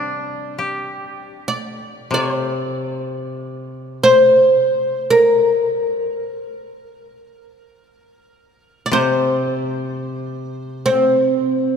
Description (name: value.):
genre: japanese traditional, Japanese chamber music.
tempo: free time.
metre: none.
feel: none.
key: unclear.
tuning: A4 = 440 Hz.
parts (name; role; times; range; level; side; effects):
oud; melody; 0.0-11.8 s; C4 to D5; -15 LUFS; equal; none.
koto; accompaniment; 0.0-11.8 s; C3 to G4; -25 LUFS; left 3 dB; none.
room: moderate church reverb, RT60 3.7 s.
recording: none.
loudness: -15 LUFS.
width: side -7 dB against mid.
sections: 0.0-11.8 A section.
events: slowing down 7.3-11.8.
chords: none.